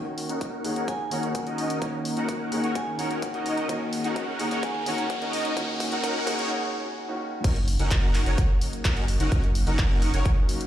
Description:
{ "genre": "EDM, festival progressive house", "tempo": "128 BPM", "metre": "4/4", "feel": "straight", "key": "F# major", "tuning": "A4 = 439 Hz", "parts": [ { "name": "warm concert grand piano", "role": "accompaniment", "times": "0.0-7.5 s", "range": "D#3 to G#4", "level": "-32 LUFS", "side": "equal", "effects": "sidechain pumping, tape echo" }, { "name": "lush unison pad", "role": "sustained chords", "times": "0.0-10.7 s", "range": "C#3 to A#4", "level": "-35 LUFS", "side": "left 1 dB", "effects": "chorus, sidechain pumping" }, { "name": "supersaw chords", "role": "riff", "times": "0.0-10.3 s", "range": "C#4 to F#5", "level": "-30 LUFS", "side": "equal", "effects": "ensemble chorus, vintage 12-bit sampler grit, sidechain pumping, low-pass filter, tape echo" }, { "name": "riser and swell", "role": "sound effects", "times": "2.4-7.4 s", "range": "none", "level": "-37 LUFS", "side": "equal", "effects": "none" }, { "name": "big-room dance drum kit", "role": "drums", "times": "0.2-10.7 s", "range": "crash cymbal, handclaps, hi-hat", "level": "-34 LUFS", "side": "left 1 dB", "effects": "none" }, { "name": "electronic kick drum", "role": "drums", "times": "0.4-10.3 s", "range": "none", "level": "-24 LUFS", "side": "equal", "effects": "high-pass filter on kick" }, { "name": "vibraphone with hard mallets", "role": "melody", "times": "0.6-6.5 s", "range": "D#5 to G#5", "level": "-34 LUFS", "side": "equal", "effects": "tape echo" }, { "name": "saturated sub bass", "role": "bass", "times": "7.4-10.2 s", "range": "F#1", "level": "-25 LUFS", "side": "equal", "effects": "sidechain pumping" } ], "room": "light reverb", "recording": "played on a big sound system in a bare room, large studio reverb, high-pass filter", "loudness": "-24 LUFS", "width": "side -12 dB against mid", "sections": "0.0-7.4 A section; 7.4-10.7 B section", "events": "build-up 0.0-7.4; filter sweep on supersaw synth 0.0-7.4; filter sweep on analog synth pad 0.0-7.4; filter sweep 0.0-7.4; riser 2.4-6.5; drum fill 3.7-6.5; break 6.5-7.4; swell 6.5-7.4; drop 7.4-10.7", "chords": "0.0 F#6" }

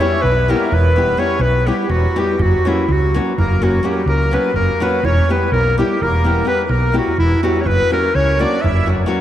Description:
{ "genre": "balkan folk, Balkan wedding band", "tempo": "250 BPM (eighths)", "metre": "11/8", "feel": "straight", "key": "unclear", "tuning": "A4 = 440 Hz", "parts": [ { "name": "bright clarinet", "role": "melody", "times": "0.0-8.9 s", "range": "E4 to E5", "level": "-18 LUFS", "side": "equal", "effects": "tape echo" }, { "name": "accordion", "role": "second line", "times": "0.0-8.9 s", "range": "E3 to E4", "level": "-24 LUFS", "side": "equal", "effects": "none" }, { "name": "nylon-string guitar", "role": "accompaniment", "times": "0.0-9.2 s", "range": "F#3 to G4", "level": "-21 LUFS", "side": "left 2 dB", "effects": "none" }, { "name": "darbuka", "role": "percussion", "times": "0.0-9.2 s", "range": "none", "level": "-22 LUFS", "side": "right 1 dB", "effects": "none" }, { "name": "hollow-body short-scale fingered electric bass", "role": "bass", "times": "0.2-9.0 s", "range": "E1 to C#2", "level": "-17 LUFS", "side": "equal", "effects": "none" } ], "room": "wet cathedral reverb, RT60 7.1 s", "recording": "in a vast, echoing space", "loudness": "-13 LUFS", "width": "side -11 dB against mid", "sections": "0.0-9.2 A section", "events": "speeding up 0.0-9.2; drum fill 7.1-7.7", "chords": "0.0 Em; 2.4 F#; 5.0 Em; 7.7 F#" }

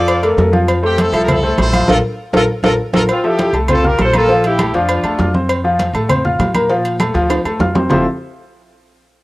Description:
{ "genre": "latin, salsa", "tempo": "200 BPM", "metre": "4/4", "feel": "straight", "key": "F major", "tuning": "A4 = 441 Hz", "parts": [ { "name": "brilliant horn section", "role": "melody", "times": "0.0-3.0 s", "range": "C4 to D5", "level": "-19 LUFS", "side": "equal", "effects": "plate reverb" }, { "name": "clear grand piano", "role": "accompaniment", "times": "0.0-8.0 s", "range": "F3 to F6", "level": "-16 LUFS", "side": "left 1 dB", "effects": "cassette tape, plate reverb" }, { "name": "upright bass", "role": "bass", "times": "0.0-8.0 s", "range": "F1 to Bb2", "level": "-20 LUFS", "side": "equal", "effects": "none" }, { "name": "agogo bells and timbales", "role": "percussion", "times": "0.1-8.0 s", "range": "none", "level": "-22 LUFS", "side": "right 3 dB", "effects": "none" }, { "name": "congas", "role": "percussion", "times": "0.1-8.0 s", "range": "none", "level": "-19 LUFS", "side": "equal", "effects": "none" }, { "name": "cowbell and bongos", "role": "percussion", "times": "0.1-8.0 s", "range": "none", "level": "-23 LUFS", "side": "left 2 dB", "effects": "none" }, { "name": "bright horn section", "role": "melody", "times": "3.1-5.4 s", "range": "C4 to C5", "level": "-16 LUFS", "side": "equal", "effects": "plate reverb" } ], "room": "moderate booth ambience, RT60 0.2 s", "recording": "home recording on cassette", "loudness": "-12 LUFS", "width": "side -19 dB against mid", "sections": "0.0-3.1 A section; 3.1-7.9 B section; 7.9-9.1 C section", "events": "band accent 1.9-3.1; drum fill 2.6-3.1, 7.3-7.9", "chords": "0.0 Bbmaj7; 0.7 Fmaj7; 1.9 Bb5; 3.1 Fmaj7; 5.5 F; 6.7 Bbmaj7; 7.9 Fmaj7" }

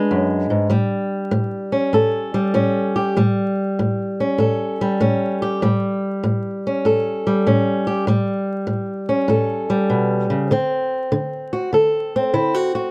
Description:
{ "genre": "blues", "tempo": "98 BPM", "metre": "4/4", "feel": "swing 67% on 8ths", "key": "A mixolydian", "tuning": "A4 = 440 Hz", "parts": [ { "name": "fingerpicked old ladder-braced acoustic guitar", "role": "solo", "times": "0.0-12.9 s", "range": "F#2 to B4", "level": "-20 LUFS", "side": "equal", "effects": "none" } ], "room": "little or no reverb", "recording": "close, detailed microphones, vinyl crackle", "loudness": "-20 LUFS", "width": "mono", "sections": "0.7-12.9 A section", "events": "none", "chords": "0.0 E7 (rootless); 0.7 A7; 10.5 D7" }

